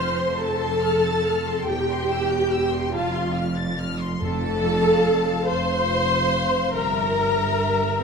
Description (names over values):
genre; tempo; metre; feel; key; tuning
classical, slow romantic movement for symphony orchestra; 47 BPM (dotted quarters); 6/8; rubato; F major from 4.2 s; A4 = 440 Hz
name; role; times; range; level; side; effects
warm studio violin section; melody; 0.0-8.0 s; E5 to A6; -33 LUFS; left 4 dB; none
warm studio violin section; second line; 0.0-8.0 s; F5 to C6; -27 LUFS; left 4 dB; none
warm studio viola section; accompaniment; 0.0-8.0 s; F4 to C5; -22 LUFS; equal; none
rich studio cello section; bass; 0.0-7.9 s; E2 to G2; -29 LUFS; right 2 dB; none
rich studio double bass section; bass; 0.0-7.9 s; E1 to G1; -29 LUFS; right 2 dB; none
timpani; percussion; 4.2-5.4 s; F2; -34 LUFS; left 1 dB; none
room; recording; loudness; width
wet scoring stage reverb, RT60 1.7 s; minimal, uncompressed stereo recording; -20 LUFS; side -5 dB against mid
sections
0.0-8.0 A section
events
none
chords
0.0 F; 1.7 C/E; 2.9 F; 6.7 Gm6